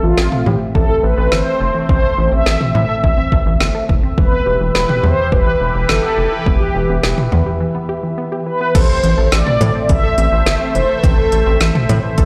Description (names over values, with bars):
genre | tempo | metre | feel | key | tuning
synth-pop | 105 BPM | 4/4 | straight | A minor | A4 = 443 Hz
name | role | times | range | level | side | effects
mellow synth brass | melody | 0.0-11.6 s | F4 to E5 | -20 LUFS | equal | chorus, slapback echo
sweeping resonant pad | sustained chords | 0.0-12.3 s | E3 to E5 | -25 LUFS | equal | chorus
unison pluck | arpeggios | 0.0-12.3 s | E3 to A4 | -26 LUFS | equal | slapback echo
rubbery square bass | bass | 0.0-12.3 s | E1 to A2 | -19 LUFS | equal | none
deep house drum kit | drums | 0.2-12.3 s | cowbell, crash cymbal, hi-hat, kick drum, snare drum, toms | -18 LUFS | equal | none
room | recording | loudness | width
light reverb, digital ambience | played on a big sound system in a bare room, large studio reverb | -15 LUFS | mono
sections
0.0-8.7 A section; 8.7-12.3 B section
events
break 7.6-8.7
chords
0.0 Am; 4.2 Em; 8.7 Am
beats
0.18 0.75 1.32 | 1.89 2.46 3.04 3.61 | 4.18 4.75 5.32 5.89 | 6.46 7.04 7.61 8.18 | 8.75 9.32 9.89 10.46 | 11.04 11.61 12.18